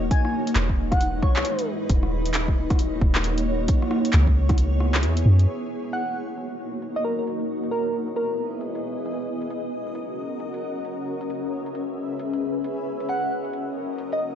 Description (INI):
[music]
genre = future garage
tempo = 134 BPM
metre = 4/4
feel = swing 62% on 16ths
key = Eb phrygian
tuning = A4 = 440 Hz
[part]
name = granular cloud pad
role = sustained chords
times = 0.0-14.3 s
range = G#3 to Fb5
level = -27 LUFS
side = equal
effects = built-in reverb, sidechain pumping
[part]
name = soft 808-style bass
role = bass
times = 0.0-5.5 s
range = Eb1 to Gb2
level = -21 LUFS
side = equal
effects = sidechain pumping
[part]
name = soft struck synth lead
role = melody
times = 0.1-1.7, 5.9-8.5, 13.1-14.2 s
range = Bb4 to G#5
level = -28 LUFS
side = equal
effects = chorus, analog delay
[part]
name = deep house drum kit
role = drums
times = 0.1-14.2 s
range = handclaps, hi-hat, rim click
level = -29 LUFS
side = equal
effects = overdrive, low-pass filter on hats, low-pass filter on snare, low-pass filter on room
[part]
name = electronic kick drum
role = drums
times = 0.1-4.6 s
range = none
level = -21 LUFS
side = equal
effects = overdrive
[sound]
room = light reverb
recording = nothing above 7.7 kHz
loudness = -22 LUFS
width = side -10 dB against mid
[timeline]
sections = 0.0-5.5 A section; 5.5-14.3 B section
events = kick drops out 4.6-5.5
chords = 0.1 Emaj7; 1.9 Ebm7; 3.7 Dbm7; 5.5 Ebm7; 7.3 Emaj7; 9.1 Ebm7; 10.9 Dbm7; 12.6 Ebm7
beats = | 0.10 0.55 1.00 1.45 | 1.90 2.34 2.79 3.24 | 3.69 4.13 4.58 5.03 | 5.48 5.93 6.37 6.82 | 7.27 7.72 8.16 8.61 | 9.06 9.51 9.96 10.40 | 10.85 11.30 11.75 12.20 | 12.64 13.09 13.54 13.99